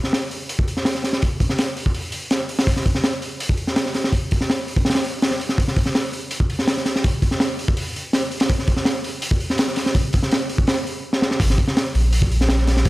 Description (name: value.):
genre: drum and bass, jungle.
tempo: 165 BPM.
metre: 4/4.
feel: straight.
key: unclear.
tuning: A4 = 440 Hz.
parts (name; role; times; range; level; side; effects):
crunchy breakbeat drum kit; drums; 0.0-12.9 s; hi-hat, kick drum, snare drum; -19 LUFS; equal; none.
soft dub sub bass; bass; 11.4-12.9 s; G#1 to A#1; -17 LUFS; equal; none.
room: little or no reverb.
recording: none.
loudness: -18 LUFS.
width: side -19 dB against mid.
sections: 0.0-11.4 A section; 11.4-12.9 B section.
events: build-up 0.0-11.4; drum fill 11.1; drop 11.4-12.9.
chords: none.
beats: 0.13 0.50 0.86 | 1.22 1.59 1.95 2.31 | 2.68 3.04 3.40 3.77 | 4.13 4.50 4.86 5.22 | 5.59 5.95 6.31 6.68 | 7.04 7.41 7.77 8.13 | 8.50 8.86 9.22 9.59 | 9.95 10.31 10.68 11.04 | 11.40 11.77 12.13 12.50 | 12.86.